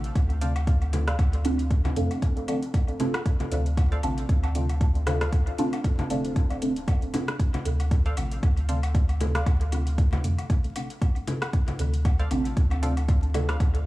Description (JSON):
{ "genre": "dub techno", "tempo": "116 BPM", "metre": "4/4", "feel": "swing 56% on 16ths", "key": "D minor", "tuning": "A4 = 440 Hz", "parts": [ { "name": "deep mellow chord stab", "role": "stabs", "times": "0.0-13.5 s", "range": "C4 to A4", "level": "-30 LUFS", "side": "right 1 dB", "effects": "chorus, phaser, sidechain pumping, dub echo" }, { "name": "soft dub sub bass", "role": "bass", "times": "0.0-13.9 s", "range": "D1 to F2", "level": "-26 LUFS", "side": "equal", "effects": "sidechain pumping" }, { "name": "deep house drum kit", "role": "drums", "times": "0.0-13.8 s", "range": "hi-hat, rim click", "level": "-37 LUFS", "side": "equal", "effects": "dub echo" }, { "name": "electronic kick drum", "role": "drums", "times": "0.2-13.7 s", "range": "none", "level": "-23 LUFS", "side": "equal", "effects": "none" }, { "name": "woodblock and congas", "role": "percussion", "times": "0.2-13.7 s", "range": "none", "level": "-37 LUFS", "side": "left 2 dB", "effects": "sidechain pumping on perc, dub echo" }, { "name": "filtered dub chord stab", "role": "riff", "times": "0.4-13.6 s", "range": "A4 to F5", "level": "-39 LUFS", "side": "equal", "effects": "wide subtle chorus, cassette tape, sidechain pumping, dub echo" } ], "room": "digital ambience", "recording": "vinyl crackle, studio ambience", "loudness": "-22 LUFS", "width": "side -17 dB against mid", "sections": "0.0-13.9 A section", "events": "none", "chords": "0.0 Dm7" }